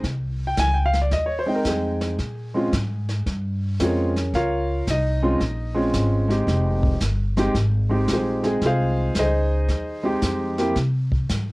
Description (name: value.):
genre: jazz piano trio.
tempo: 112 BPM.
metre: 4/4.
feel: swing 67% on 8ths.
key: F minor.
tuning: A4 = 439 Hz.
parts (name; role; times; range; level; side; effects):
warm concert grand piano; melody; 0.0-10.8 s; Ab3 to Ab5; -22 LUFS; equal; none.
upright bass; bass; 0.0-11.5 s; F1 to C3; -23 LUFS; equal; none.
jazz brush drum kit; drums; 0.0-11.5 s; brushed snare drum, hi-hat, kick drum, snare drum; -28 LUFS; equal; cassette tape.
room: light reverb.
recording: home recording on cassette.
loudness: -20 LUFS.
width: side -22 dB against mid.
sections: 0.0-11.5 A section.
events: grand piano solo 0.0-11.5.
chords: 0.0 Fm7; 2.2 Bbm7; 6.5 Fm7; 10.8 N.C..